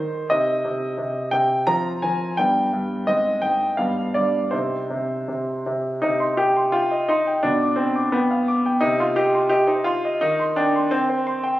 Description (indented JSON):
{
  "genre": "classical-period piano sonatina",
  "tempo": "86 BPM",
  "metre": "2/4",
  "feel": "rubato",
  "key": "C minor",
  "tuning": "A4 = 440 Hz",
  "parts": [
    { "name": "clear baby grand piano", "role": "solo", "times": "0.0-11.6 s", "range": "G2 to D6", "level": "-19 LUFS", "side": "equal", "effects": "none" }
  ],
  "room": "moderate recital hall reverb, RT60 1.6 s",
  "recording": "recorded on a phone in the room, club reverb",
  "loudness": "-19 LUFS",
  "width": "side -15 dB against mid",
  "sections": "0.0-6.0 A section; 6.0-11.6 B section",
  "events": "none",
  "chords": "0.3 Cm; 1.7 Fm; 2.4 G; 3.1 Ab; 3.8 G7; 4.5 Cm; 7.4 G7/B; 8.8 Cm; 10.2 Cm/Eb",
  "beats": "| 0.30 0.98 | 1.68 2.37 | 3.07 3.78 | 4.52 5.27 | 6.02 6.74 | 7.44 8.14 | 8.82 9.51 | 10.21 10.91 | 11.59"
}